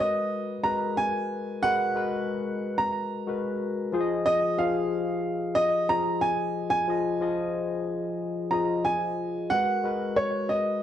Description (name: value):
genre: soul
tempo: 91 BPM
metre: 4/4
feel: straight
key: unclear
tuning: A4 = 439 Hz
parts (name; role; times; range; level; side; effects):
- warm baby grand piano; melody; 0.0-10.8 s; Db5 to Bb5; -26 LUFS; right 2 dB; slapback echo
- barky tine electric piano; accompaniment; 0.0-10.8 s; F3 to F5; -28 LUFS; left 3 dB; overdrive, lush chorus
room: light reverb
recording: dry, close 1970s-style studio recording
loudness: -25 LUFS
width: side -10 dB against mid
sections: 0.0-10.8 A section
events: none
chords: 0.0 Abm9; 3.9 Fm7; 9.5 Abm9